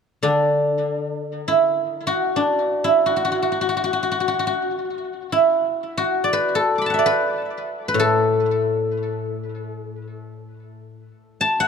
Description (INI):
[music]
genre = chinese traditional, Chinese solo plucked strings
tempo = free time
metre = none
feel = none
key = D gong mode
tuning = A4 = 440 Hz
[part]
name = guzheng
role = solo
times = 0.2-11.7 s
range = A2 to D6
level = -19 LUFS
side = equal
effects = tape echo
[sound]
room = moderate recital hall reverb, RT60 1.7 s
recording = dark, warm production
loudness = -18 LUFS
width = side -6 dB against mid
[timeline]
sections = 0.0-11.7 A section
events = none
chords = none